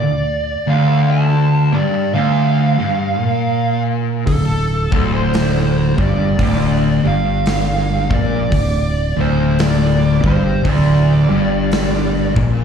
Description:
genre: stoner and doom metal.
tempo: 56 BPM.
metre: 4/4.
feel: swing 61% on 8ths.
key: D minor.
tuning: A4 = 440 Hz.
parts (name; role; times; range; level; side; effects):
fuzz lead guitar; melody; 0.0-12.3 s; A4 to A5; -21 LUFS; right 3 dB; wah, distortion, slapback echo, tape echo.
fuzz guitar; riff; 0.0-12.6 s; D2 to Bb2; -16 LUFS; left 1 dB; distortion, slapback echo.
fingered electric bass; bass; 4.3-12.6 s; D1 to Bb1; -19 LUFS; equal; overdrive.
big rock drum kit; drums; 4.3-12.6 s; hi-hat, kick drum, snare drum; -21 LUFS; equal; none.
room: little or no reverb.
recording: live gig heard through the venue's PA, club reverb.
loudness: -13 LUFS.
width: side -7 dB against mid.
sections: 0.0-12.6 A section.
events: none.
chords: 0.0 Dm.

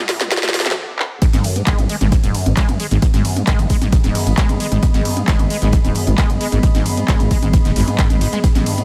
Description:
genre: driving peak-time techno.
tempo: 133 BPM.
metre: 4/4.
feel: straight.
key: G# phrygian.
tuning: A4 = 440 Hz.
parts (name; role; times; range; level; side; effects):
acid bass, saw; riff; 0.0-8.8 s; G#1 to A3; -25 LUFS; equal; ensemble chorus, sidechain pumping, dub echo.
dark detuned saw bass; bass; 0.0-8.6 s; D#1 to A1; -21 LUFS; equal; sidechain pumping, high-pass filter.
granular cloud pad; texture; 0.2-8.8 s; B3 to D6; -29 LUFS; equal; built-in reverb, sidechain pumping.
electronic kick drum; drums; 0.1-8.5 s; none; -18 LUFS; equal; high-pass filter on kick, high-pass filter on room.
techno drum kit; drums; 0.1-8.8 s; handclaps, hi-hat, ride cymbal, snare drum, toms; -24 LUFS; equal; none.
big rock drum kit; drums; 1.2-8.8 s; hi-hat, snare drum; -38 LUFS; equal; none.
room: light reverb.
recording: high-pass filter.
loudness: -16 LUFS.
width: mono.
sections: 0.0-1.2 A section; 1.2-8.8 B section.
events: build-up 0.0-1.2; drum fill 0.0-0.8, 1.0; stop 0.8-1.2; drop 1.2-8.8.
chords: 0.0 Am; 1.2 G#m.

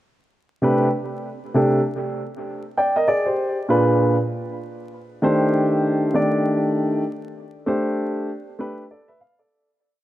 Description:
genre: hip hop.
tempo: 98 BPM.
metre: 4/4.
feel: swing 59% on 16ths.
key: unclear.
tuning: A4 = 440 Hz.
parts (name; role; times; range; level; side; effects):
dark baby grand piano; solo; 0.6-9.7 s; Bb2 to G5; -19 LUFS; equal; tape echo.
room: moderate plate reverb, RT60 2.3 s.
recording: dark, warm production, vinyl crackle.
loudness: -18 LUFS.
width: side -14 dB against mid.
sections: 0.0-9.5 A section.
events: fade-out 7.1-9.5.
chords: 0.0 Csus2; 2.2 N.C.; 3.4 Bb7b9; 4.6 Ebmaj7#11; 7.1 D5; 8.3 Gadd9.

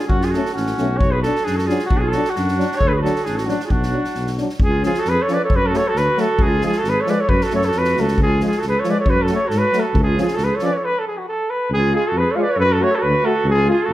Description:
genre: balkan folk, Balkan brass band.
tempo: 135 BPM.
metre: 2/4.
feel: straight.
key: unclear.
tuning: A4 = 441 Hz.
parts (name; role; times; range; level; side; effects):
warm flugelhorn; melody; 0.0-13.9 s; F#4 to E#5; -20 LUFS; equal; none.
clear clarinet; second line; 0.0-13.9 s; C#4 to C#5; -25 LUFS; right 3 dB; none.
mellow tuba; bass; 0.1-13.9 s; G#1 to G#2; -22 LUFS; equal; none.
street-band drum kit; percussion; 0.1-10.7 s; kick drum, snare drum; -23 LUFS; equal; none.
clear euphonium; accompaniment; 0.3-13.8 s; E#3 to A3; -28 LUFS; right 4 dB; none.
warm French horn; accompaniment; 0.4-13.8 s; G#3 to F#4; -26 LUFS; left 4 dB; none.
room: moderate recital hall reverb, RT60 1.7 s.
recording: none.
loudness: -16 LUFS.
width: side -14 dB against mid.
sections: 0.0-4.6 A section; 4.6-11.7 B section; 11.7-13.9 B section.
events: speeding up 0.0-13.9; stop 10.8-11.7.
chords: 0.1 F#m; 1.0 Bm; 2.8 D; 3.7 Bm; 4.6 C#; 5.5 F#m; 6.4 C#; 7.3 F#m; 8.2 C#; 9.1 F#m; 10.0 C#; 10.8 N.C.; 11.7 C#; 12.6 F#m.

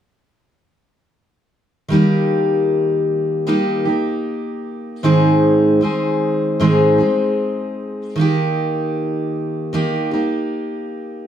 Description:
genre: pop.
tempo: 77 BPM.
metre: 4/4.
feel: straight.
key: Eb major.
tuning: A4 = 443 Hz.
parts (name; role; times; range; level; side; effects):
picked steel-string acoustic guitar; accompaniment; 1.9-11.3 s; Ab2 to Ab4; -16 LUFS; equal; none.
room: moderate studio reverb, RT60 0.6 s.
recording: none.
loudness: -15 LUFS.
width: side -9 dB against mid.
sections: 1.9-11.3 A section.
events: none.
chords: 1.9 Eb; 5.0 Ab; 8.2 Eb.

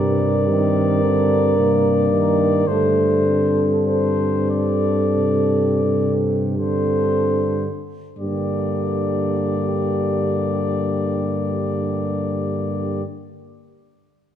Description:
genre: classical, hymn-like piece for brass band.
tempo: 35-56 BPM.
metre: 4/4.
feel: rubato.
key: G minor.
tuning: A4 = 440 Hz.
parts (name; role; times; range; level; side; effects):
warm cornet; melody; 0.0-13.0 s; C5 to D5; -26 LUFS; left 7 dB; none.
mellow French horn section; second line; 0.0-13.0 s; G4 to Bb4; -22 LUFS; right 3 dB; none.
clear trombone; accompaniment; 0.0-13.0 s; C3 to Eb3; -27 LUFS; right 1 dB; none.
warm euphonium; accompaniment; 0.0-13.0 s; G3 to C4; -27 LUFS; left 4 dB; none.
warm tuba; bass; 0.0-13.0 s; G2; -22 LUFS; equal; none.
room: moderate concert hall reverb, RT60 2.0 s.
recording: none.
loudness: -17 LUFS.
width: side -10 dB against mid.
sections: 0.0-8.2 A section; 8.2-13.8 B section.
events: slowing down 0.0-8.2.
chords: 0.0 Cm/G; 2.7 D5/G; 8.2 Gm.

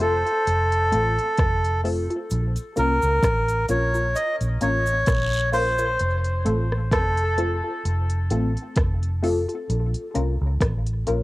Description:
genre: dub reggae.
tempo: 65 BPM.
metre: 4/4.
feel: swing 55% on 16ths.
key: Bb harmonic minor.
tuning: A4 = 440 Hz.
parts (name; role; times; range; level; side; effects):
melodica; melody; 0.0-7.4 s; A4 to Eb5; -23 LUFS; equal; dub echo.
filtered dub chord stab; stabs; 0.0-11.2 s; A3 to Bb4; -28 LUFS; left 2 dB; phaser, cassette tape, dub echo, plate reverb.
vintage muted fingered electric bass; bass; 0.0-11.2 s; F1 to Db2; -24 LUFS; equal; tube saturation.
deep house drum kit; drums; 0.3-11.2 s; hi-hat, kick drum, rim click; -24 LUFS; equal; cassette tape.
cabasa and guiro; percussion; 2.3-6.0 s; none; -39 LUFS; right 2 dB; dub echo.
room: moderate small room ambience, RT60 0.5 s.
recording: home recording on cassette.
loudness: -20 LUFS.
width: side -18 dB against mid.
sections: 0.0-11.2 A section.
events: break 0.0-2.3; part muted 6.0-11.2.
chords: 0.0 F; 2.3 Bbm; 6.0 F; 9.7 Bbm.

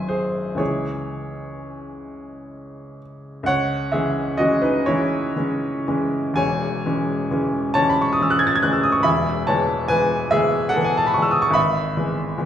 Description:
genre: classical, romantic nocturne for solo piano.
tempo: 38-49 BPM (dotted quarters).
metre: 6/8.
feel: rubato.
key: C# minor.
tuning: A4 = 440 Hz.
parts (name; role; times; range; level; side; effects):
clear upright piano; solo; 0.0-12.5 s; E1 to A6; -19 LUFS; equal; none.
room: wet recital hall reverb, RT60 1.4 s.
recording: recorded in a church or concert hall.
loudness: -18 LUFS.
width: side -9 dB against mid.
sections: 0.0-3.5 A section; 3.5-12.5 B section.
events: none.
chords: 0.0 G#5; 0.6 C#m; 6.4 C#m/E; 11.6 E/G#.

